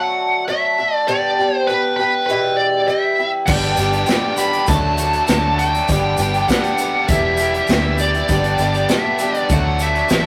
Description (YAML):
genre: folk rock and heartland rock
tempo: 100 BPM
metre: 4/4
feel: straight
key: G major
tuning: A4 = 440 Hz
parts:
  - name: smooth overdriven lead guitar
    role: melody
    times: 0.0-10.3 s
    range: B4 to B5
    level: -22 LUFS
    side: equal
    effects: none
  - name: picked swing-style acoustic guitar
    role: accompaniment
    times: 0.0-10.3 s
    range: E2 to G4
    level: -23 LUFS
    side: equal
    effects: none
  - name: bright upright piano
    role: accompaniment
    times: 3.5-10.3 s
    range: F#3 to E5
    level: -36 LUFS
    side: equal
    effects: none
  - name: biting overdriven guitar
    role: riff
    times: 3.5-10.3 s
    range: E2 to G4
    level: -26 LUFS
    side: equal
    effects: none
  - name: fingered electric bass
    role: bass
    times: 3.5-10.3 s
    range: E1 to D2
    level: -24 LUFS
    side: equal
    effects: none
  - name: natural country drum kit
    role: drums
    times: 3.5-10.2 s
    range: crash cymbal, hi-hat, kick drum, snare drum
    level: -23 LUFS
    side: equal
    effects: none
  - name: tube shaker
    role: percussion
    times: 3.5-10.2 s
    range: none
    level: -36 LUFS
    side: equal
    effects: none
room: moderate studio reverb, RT60 0.6 s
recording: rough rehearsal-room recording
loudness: -17 LUFS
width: mono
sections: 0.0-10.3 A section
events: none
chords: 0.0 D; 1.1 G; 2.3 Em; 3.5 G; 4.7 D; 5.9 G; 7.1 Em; 8.3 G; 9.5 D